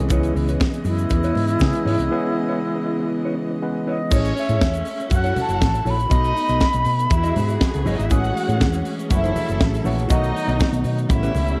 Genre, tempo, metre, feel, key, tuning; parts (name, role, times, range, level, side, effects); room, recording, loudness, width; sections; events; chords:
disco; 120 BPM; 4/4; straight; A4 = 442 Hz
bright reedy alto flute; melody; 0.0-7.9 s; E4 to B5; -27 LUFS; equal; slapback echo
mellow electric guitar; accompaniment; 0.0-11.5 s; C#4 to D#5; -34 LUFS; equal; spring reverb
tine electric piano; accompaniment; 0.0-4.1, 8.1-11.6 s; C#3 to B4; -29 LUFS; equal
clear studio string section; sustained chords; 0.0-11.6 s; C#3 to D#5; -32 LUFS; equal
hollow-body short-scale fingered electric bass; bass; 0.0-11.5 s; F#1 to C#3; -24 LUFS; equal
tight funk drum kit; drums; 0.1-11.6 s; crash cymbal, hi-hat, kick drum, snare drum; -24 LUFS; equal
congas; percussion; 0.1-11.5 s; -33 LUFS; equal
egg shaker; percussion; 0.1-11.6 s; -47 LUFS; equal
dark studio violin section; second line; 4.1-11.6 s; G#3 to F#5; -30 LUFS; equal
light reverb, small room reverb; dark, warm production; -20 LUFS; mono
0.0-4.1 A section; 4.1-11.6 B section
break 2.1-4.1
0.0 C#m7; 4.1 Amaj7; 5.1 F#m7; 6.1 B7; 7.1 Emaj7; 8.1 Amaj7; 9.1 F#m7; 10.1 B7